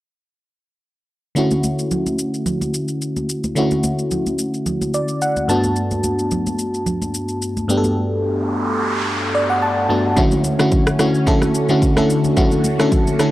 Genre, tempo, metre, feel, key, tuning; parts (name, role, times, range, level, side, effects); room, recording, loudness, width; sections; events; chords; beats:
amapiano; 109 BPM; 4/4; swing 55% on 16ths; D major; A4 = 439 Hz
FM electric piano; accompaniment; 1.4-13.3 s; G2 to A5; -17 LUFS; equal; chorus
deep house drum kit; drums; 1.4-13.3 s; kick drum, rim click, shaker; -21 LUFS; equal; overdrive
congas; percussion; 1.5-13.2 s; -26 LUFS; right 1 dB
noise sweep; sound effects; 8.3-10.2 s; -24 LUFS; equal
phased string machine; sustained chords; 10.2-13.3 s; D3 to F#4; -25 LUFS; equal; ensemble chorus, phaser, sidechain pumping
little or no reverb; dry, gritty hardware recording, transformer saturation; -16 LUFS; side -16 dB against mid
1.4-10.2 A section; 10.2-13.3 B section
FM electric piano fill 4.7-5.8, 9.1-10.2; noise sweep 8.3-10.2
1.4 Dmaj7; 5.5 Gmaj9; 10.2 Dmaj7
| 1.36 1.91 2.46 3.01 | 3.56 4.11 4.66 5.21 | 5.76 6.32 6.87 7.42 | 7.97 8.52 9.07 9.62 | 10.17 10.72 11.27 11.82 | 12.37 12.92